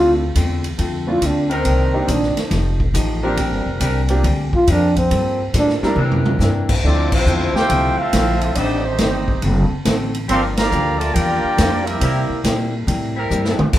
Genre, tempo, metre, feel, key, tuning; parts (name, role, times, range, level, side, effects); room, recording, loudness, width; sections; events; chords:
jazz, big band swing; 139 BPM; 4/4; swing 66% on 8ths; D minor from 6.8 s; A4 = 439 Hz
dark trombone; melody; 0.0-5.7 s; C4 to F4; -18 LUFS; equal; plate reverb
archtop guitar, miked and amplified; accompaniment; 0.0-13.8 s; G2 to A4; -25 LUFS; left 2 dB
warm baby grand piano; accompaniment; 0.0-6.0 s; G3 to Bb4; -23 LUFS; right 1 dB
upright bass; bass; 0.0-13.8 s; F1 to C3; -19 LUFS; equal
swinging big-band drum kit; drums; 0.4-13.8 s; crash cymbal, hi-hat, kick drum, ride cymbal, snare drum, toms; -23 LUFS; equal
mellow saxophone section; sustained chords; 1.5-13.7 s; Eb3 to C5; -26 LUFS; equal
warm trombone section; second line; 6.8-13.8 s; D3 to G4; -24 LUFS; right 1 dB
warm trumpet section; melody; 6.9-12.4 s; A3 to C6; -21 LUFS; equal
wet club reverb, RT60 0.8 s; heard from further back in the room; -15 LUFS; side -13 dB against mid
0.0-6.8 A section; 6.8-13.8 B section
trombone solo 0.0-6.8; drum fill 6.0-6.4, 13.3-13.7; band accent 7.1, 10.5
0.0 Dm7; 1.7 Cm9; 2.5 F9; 3.4 Bb69; 5.1 Gm9; 6.0 C9; 6.8 Dm9; 8.6 Am7b5; 9.4 D7; 10.3 Gm7; 12.0 C7